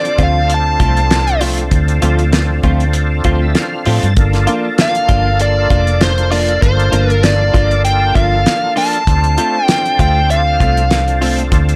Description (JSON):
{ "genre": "straight-eighth soul blues", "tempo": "98 BPM", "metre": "4/4", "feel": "swing 55% on 16ths", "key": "D minor", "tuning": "A4 = 440 Hz", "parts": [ { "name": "smooth overdriven lead guitar", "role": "melody", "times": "0.0-11.2 s", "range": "C5 to A5", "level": "-18 LUFS", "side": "equal", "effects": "none" }, { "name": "overdriven tonewheel organ", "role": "accompaniment", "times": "0.0-11.8 s", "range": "Bb3 to A5", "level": "-23 LUFS", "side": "equal", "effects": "slow rotary speaker, chorus vibrato" }, { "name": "cloth-damped thuddy drum kit", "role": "drums", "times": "0.0-11.8 s", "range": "hi-hat, kick drum, snare drum", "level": "-18 LUFS", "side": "equal", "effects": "none" }, { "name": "direct-recorded clean electric guitar", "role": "stabs", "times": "0.2-11.4 s", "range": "F3 to F4", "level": "-22 LUFS", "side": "equal", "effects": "analog chorus" }, { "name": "vintage muted fingered electric bass", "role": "bass", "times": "0.2-11.8 s", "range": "F1 to A2", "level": "-17 LUFS", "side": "equal", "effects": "none" } ], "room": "little or no reverb", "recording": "none", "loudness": "-13 LUFS", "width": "mono", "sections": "0.0-11.8 A section", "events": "tonewheel organ fill 3.0-4.2", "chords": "0.0 Dm7; 4.2 Gm7; 9.1 Dm7", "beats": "0.50 1.11 | 1.73 2.34 2.95 3.56 | 4.17 4.79 5.40 6.01 | 6.62 7.24 7.85 8.46 | 9.07 9.69 10.30 10.91 | 11.53" }